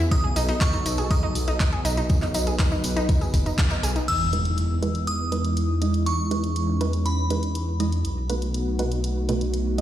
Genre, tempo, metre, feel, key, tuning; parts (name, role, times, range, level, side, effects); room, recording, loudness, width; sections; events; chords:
progressive house; 121 BPM; 4/4; straight; E major; A4 = 440 Hz
warm analog pad; sustained chords; 0.0-9.8 s; F#3 to B4; -30 LUFS; equal; chorus, sidechain pumping
dark detuned saw bass; bass; 0.0-9.8 s; F#1 to E2; -25 LUFS; equal; sidechain pumping
glassy synth bell; melody; 0.1-7.8 s; B5 to E6; -31 LUFS; equal; chorus, digital delay
analog pluck; arpeggios; 0.1-4.0 s; D#4 to G#4; -29 LUFS; equal; chorus, sidechain pumping, digital delay
electronic kick drum; drums; 0.1-3.7 s; -21 LUFS; equal; overdrive
pop drum kit; drums; 0.1-9.8 s; crash cymbal, handclaps, hi-hat; -33 LUFS; equal; overdrive
tambourine; percussion; 0.1-4.1 s; -36 LUFS; right 2 dB
impact; sound effects; 4.1-6.1 s; -33 LUFS; equal
wide unison pluck; stabs; 4.3-9.8 s; B2 to D#5; -30 LUFS; right 4 dB; vintage 12-bit sampler grit, sidechain pumping, digital delay
light reverb; played on a big sound system in a bare room, stone room reverb; -21 LUFS; side -12 dB against mid
0.0-4.1 A section; 4.1-9.8 B section
band accent 3.6; impact 4.1-6.1; filter sweep on synth pluck 4.1-9.8; filter sweep on analog synth pad 4.1-9.8
0.1 B7; 4.1 Emaj7; 8.0 B7